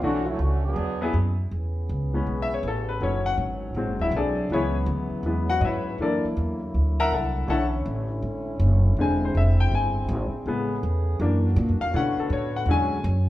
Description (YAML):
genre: jazz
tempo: 161 BPM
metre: 4/4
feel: swing 64% on 8ths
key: A major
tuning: A4 = 440 Hz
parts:
  - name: bright trombone section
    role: second line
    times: 0.0-1.1 s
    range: D3 to G#4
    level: -29 LUFS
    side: right 2 dB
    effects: none
  - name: clear baby grand piano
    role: accompaniment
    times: 0.0-13.3 s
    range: C#3 to A#5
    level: -26 LUFS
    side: left 3 dB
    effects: none
  - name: upright bass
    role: bass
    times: 0.0-13.3 s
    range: D1 to B2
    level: -24 LUFS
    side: equal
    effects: none
  - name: warm trombone section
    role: sustained chords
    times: 1.5-13.3 s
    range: C#3 to G#4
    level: -33 LUFS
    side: equal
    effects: none
room: moderate large studio reverb, RT60 1.1 s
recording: heard from further back in the room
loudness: -22 LUFS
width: side -15 dB against mid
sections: 0.0-1.5 A section; 1.5-13.3 B section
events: trombone section solo 0.0-1.5; grand piano solo 1.5-13.3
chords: 0.0 Bm9; 0.8 E9; 1.5 Amaj9; 3.0 D#m7b5; 3.8 D7#11; 4.5 C#m7; 6.0 F#7alt; 7.5 Bm11; 9.0 E7alt; 10.5 Amaj9; 11.2 F#7b13; 11.9 Bm7; 12.7 E13